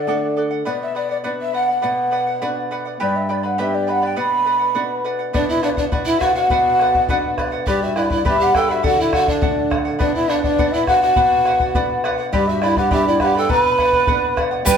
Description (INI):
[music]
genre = andean folk, Andean ensemble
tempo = 103 BPM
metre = 2/4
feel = straight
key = B minor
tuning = A4 = 441 Hz
[part]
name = breathy mellow quena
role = melody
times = 0.0-14.8 s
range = D5 to B5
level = -19 LUFS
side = left 1 dB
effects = none
[part]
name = charango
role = accompaniment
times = 0.0-14.8 s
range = G4 to B5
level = -24 LUFS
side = right 2 dB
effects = none
[part]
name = flamenco guitar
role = accompaniment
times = 0.0-14.8 s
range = G2 to G4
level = -24 LUFS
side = equal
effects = none
[part]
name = breathy bright pan flute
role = second line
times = 5.3-14.8 s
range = D4 to B4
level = -22 LUFS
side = right 3 dB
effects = none
[part]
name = bombo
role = percussion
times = 5.3-14.8 s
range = none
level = -24 LUFS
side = left 1 dB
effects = none
[part]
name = tube shaker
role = percussion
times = 14.7-14.8 s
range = none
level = -21 LUFS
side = left 5 dB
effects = none
[sound]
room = wet stone room reverb, RT60 1.2 s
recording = band playing live in one room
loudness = -16 LUFS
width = side -7 dB against mid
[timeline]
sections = 0.0-5.3 A section; 5.3-14.7 A section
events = none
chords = 0.0 D; 0.7 Bm; 3.0 G; 4.2 Bm; 7.7 G; 8.8 D; 10.0 Bm; 12.3 G; 13.5 Bm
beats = 0.08 | 0.66 1.25 | 1.83 2.42 | 3.00 3.59 | 4.17 4.75 | 5.34 5.92 | 6.51 7.09 | 7.67 8.26 | 8.84 9.42 | 10.00 10.59 | 11.17 11.75 | 12.33 12.92 | 13.50 14.08 | 14.66